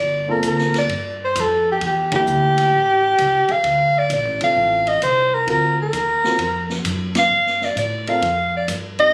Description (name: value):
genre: jazz, small-group swing and bop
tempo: 131 BPM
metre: 4/4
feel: swing 67% on 8ths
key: G minor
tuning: A4 = 436 Hz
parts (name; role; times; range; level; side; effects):
- mellow soprano saxophone; melody; 0.0-9.1 s; G4 to F5; -19 LUFS; equal; none
- upright bass; bass; 0.0-9.1 s; F1 to A2; -29 LUFS; equal; none
- warm concert grand piano; accompaniment; 0.3-9.1 s; Bb3 to D5; -28 LUFS; equal; none
- vintage drum kit; drums; 0.4-9.1 s; hi-hat, kick drum, ride cymbal, snare drum; -31 LUFS; equal; none
room: moderate club reverb, RT60 0.7 s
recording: recorded on a phone in the room, studio ambience, compression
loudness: -18 LUFS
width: mono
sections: 0.0-9.1 A section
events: band accent 2.0, 7.1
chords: 0.0 Gm11; 1.8 Em7b5; 2.7 A7; 3.6 Dm7; 5.5 D7alt; 7.3 G9sus4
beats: 0.43 0.89 1.35 | 1.81 2.27 2.73 3.18 | 3.64 4.10 4.56 5.02 | 5.47 5.93 6.39 6.85 | 7.31 7.77 8.22 8.68